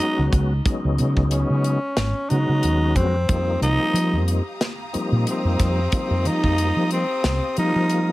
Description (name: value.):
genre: electric jazz fusion.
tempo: 91 BPM.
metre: 4/4.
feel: swing 56% on 16ths.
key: unclear.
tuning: A4 = 442 Hz.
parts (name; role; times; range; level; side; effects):
growling tenor saxophone; melody; 0.0-8.1 s; C4 to Eb4; -24 LUFS; equal; plate reverb.
tonewheel organ; accompaniment; 0.0-8.1 s; F3 to Gb4; -26 LUFS; left 2 dB; slow rotary speaker, chorus vibrato.
modern studio drum kit; drums; 0.0-8.1 s; hi-hat, kick drum, snare drum; -24 LUFS; equal; none.
mellow fretless electric bass; bass; 0.2-8.1 s; Ab1 to F3; -21 LUFS; equal; ensemble chorus.
clear studio string section; sustained chords; 3.3-8.1 s; G4 to Eb6; -33 LUFS; left 1 dB; none.
room: little or no reverb.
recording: none.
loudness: -18 LUFS.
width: side -17 dB against mid.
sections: 0.0-8.1 A section.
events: tenor saxophone solo 0.0-8.1.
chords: 0.0 Db9sus4; 3.3 F9sus4.